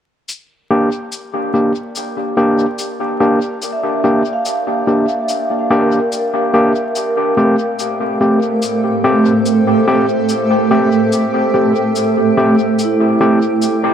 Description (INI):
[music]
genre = ambient dub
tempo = 72 BPM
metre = 4/4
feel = swing 54% on 16ths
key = G dorian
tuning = A4 = 440 Hz
[part]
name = granular cloud pad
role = sustained chords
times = 1.3-13.9 s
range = A3 to G5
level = -17 LUFS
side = right 2 dB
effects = built-in reverb
[part]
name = cabasa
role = drums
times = 0.3-13.8 s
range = none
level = -28 LUFS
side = left 4 dB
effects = dub echo
[part]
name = overdriven tine electric piano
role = stabs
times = 0.7-13.4 s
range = A3 to G4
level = -15 LUFS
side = equal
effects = low-pass filter, dub echo
[part]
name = vibraphone with medium mallets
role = arpeggios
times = 3.7-7.1, 12.8-13.9 s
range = E4 to F5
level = -20 LUFS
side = right 1 dB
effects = low-pass filter, tape echo
[sound]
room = moderate spring reverb, RT60 2.4 s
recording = vinyl crackle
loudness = -12 LUFS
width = side -8 dB against mid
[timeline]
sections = 0.3-13.6 A section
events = fade-in on ambient pad 0.3-13.6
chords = 0.3 Gm; 7.0 Am7